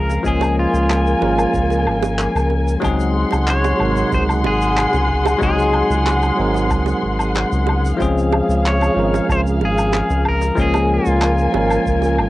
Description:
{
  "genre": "sunset chillout",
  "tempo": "93 BPM",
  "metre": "4/4",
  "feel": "straight",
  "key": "unclear",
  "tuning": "A4 = 439 Hz",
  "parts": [
    { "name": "pedal steel guitar", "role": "melody", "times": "0.0-12.3 s", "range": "F4 to Db5", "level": "-22 LUFS", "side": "left 1 dB", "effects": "cassette tape, analog delay" },
    { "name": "bell-like tine electric piano", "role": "accompaniment", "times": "0.0-12.3 s", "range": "C3 to Bb4", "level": "-20 LUFS", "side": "moving between left 4 dB and right 4 dB", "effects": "auto-pan, cassette tape" },
    { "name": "dark studio string section", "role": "sustained chords", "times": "0.0-12.3 s", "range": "Ab4 to C6", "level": "-22 LUFS", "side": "left 1 dB", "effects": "cassette tape" },
    { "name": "round analog bass", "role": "bass", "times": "0.0-12.3 s", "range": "Ab1 to Db2", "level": "-20 LUFS", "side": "equal", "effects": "none" },
    { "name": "shaker, woodblock and handclaps", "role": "drums", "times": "0.1-12.3 s", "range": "none", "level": "-25 LUFS", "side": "equal", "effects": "cassette tape" },
    { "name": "bongos", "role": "percussion", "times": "0.1-12.2 s", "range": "none", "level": "-26 LUFS", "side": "right 10 dB", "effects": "none" },
    { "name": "electronic kick drum", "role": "drums", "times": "0.2-12.3 s", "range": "none", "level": "-25 LUFS", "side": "equal", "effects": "cassette tape" }
  ],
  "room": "moderate booth ambience, RT60 0.2 s",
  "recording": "home recording on cassette",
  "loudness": "-15 LUFS",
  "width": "side -16 dB against mid",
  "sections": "0.0-12.3 A section",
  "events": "none",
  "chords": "0.3 Bbm7; 2.8 Ab7; 8.0 Dbmaj7; 10.6 Bbm7"
}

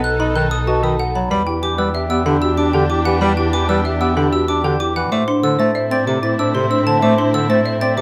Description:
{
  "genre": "classical, minimalist pattern music",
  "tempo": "189 BPM",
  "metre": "6/4",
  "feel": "straight",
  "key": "E minor",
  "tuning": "A4 = 440 Hz",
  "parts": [
    { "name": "concert harp", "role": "melody", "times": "0.0-8.0 s", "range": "G4 to C6", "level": "-28 LUFS", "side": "equal", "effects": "none" },
    { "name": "alto flute", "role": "second line", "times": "0.0-8.0 s", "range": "G4 to C5", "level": "-26 LUFS", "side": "equal", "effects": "none" },
    { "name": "rich studio string section", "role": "sustained chords", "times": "0.0-8.0 s", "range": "C4 to A4", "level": "-29 LUFS", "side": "equal", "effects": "none" },
    { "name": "folk marimba with medium hard mallets", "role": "arpeggios", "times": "0.0-8.0 s", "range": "C4 to F#5", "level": "-25 LUFS", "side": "equal", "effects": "none" },
    { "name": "xylophone with plastic mallets", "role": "arpeggios", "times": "0.0-8.0 s", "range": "E5 to A6", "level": "-25 LUFS", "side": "equal", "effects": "none" },
    { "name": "warm double bass", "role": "bass", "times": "0.0-8.0 s", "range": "B1 to A2", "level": "-25 LUFS", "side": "equal", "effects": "none" },
    { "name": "clear bass clarinet", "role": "accompaniment", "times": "0.2-8.0 s", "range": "C3 to F#4", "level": "-23 LUFS", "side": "equal", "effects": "none" }
  ],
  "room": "light reverb",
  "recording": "none",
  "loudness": "-17 LUFS",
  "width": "mono",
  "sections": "0.0-1.3 A section; 1.3-8.0 B section",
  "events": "none",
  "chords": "0.0 B7; 1.3 Em7; 5.1 Am"
}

